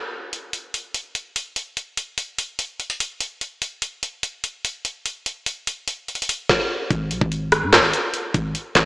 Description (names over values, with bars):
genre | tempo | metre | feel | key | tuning
hip hop, trap | 146 BPM | 4/4 | half-time | G# minor | A4 = 443 Hz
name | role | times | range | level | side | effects
trap drum kit | drums | 0.3-8.9 s | handclaps, hi-hat, kick drum, rim click, snare drum | -20 LUFS | equal | none
warm 808-style bass | bass | 6.9-8.9 s | G#1 to G#2 | -25 LUFS | equal | none
room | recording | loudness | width
wet lush hall reverb, RT60 2.0 s | dreamy mix soaked in reverb, small speaker sound | -22 LUFS | side -20 dB against mid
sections
0.3-6.9 A section; 6.9-8.9 B section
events
break 0.0-0.3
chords
none